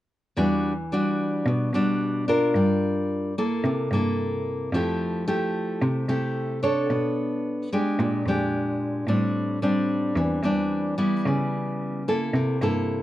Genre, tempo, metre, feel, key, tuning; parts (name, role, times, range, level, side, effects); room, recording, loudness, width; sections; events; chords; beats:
bossa nova; 110 BPM; 4/4; straight; E minor; A4 = 440 Hz
nylon-string guitar; accompaniment; 0.4-13.0 s; A2 to C#5; -23 LUFS; equal
clear cello; bass; 0.4-13.0 s; E2 to C#3; -28 LUFS; equal
moderate studio ambience, RT60 0.5 s; -22 LUFS; side -14 dB against mid
0.4-13.0 A section
0.4 Em9; 2.5 Gm7; 3.6 C6; 4.7 Fmaj9; 6.9 Bm9; 8.0 A#6; 9.1 Am11; 11.3 C#m7b5; 12.3 C6
| 0.37 0.92 1.46 2.01 | 2.55 3.10 3.64 4.18 | 4.73 5.27 5.82 6.36 | 6.90 7.45 7.99 8.53 | 9.08 9.62 10.16 10.71 | 11.25 11.79 12.34 12.88